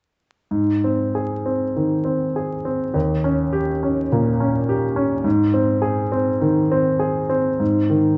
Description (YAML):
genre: classical, romantic character piece for solo piano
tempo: 102 BPM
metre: 4/4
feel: rubato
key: Ab major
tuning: A4 = 440 Hz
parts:
  - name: clear baby grand piano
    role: solo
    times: 0.5-8.2 s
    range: Eb2 to Ab4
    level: -20 LUFS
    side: equal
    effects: none
room: wet large studio reverb, RT60 1.2 s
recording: dark, warm production, vinyl crackle, nothing above 8.0 kHz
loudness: -20 LUFS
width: mono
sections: 0.5-8.2 A section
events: none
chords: 0.5 Ab; 2.9 Eb7; 5.2 Ab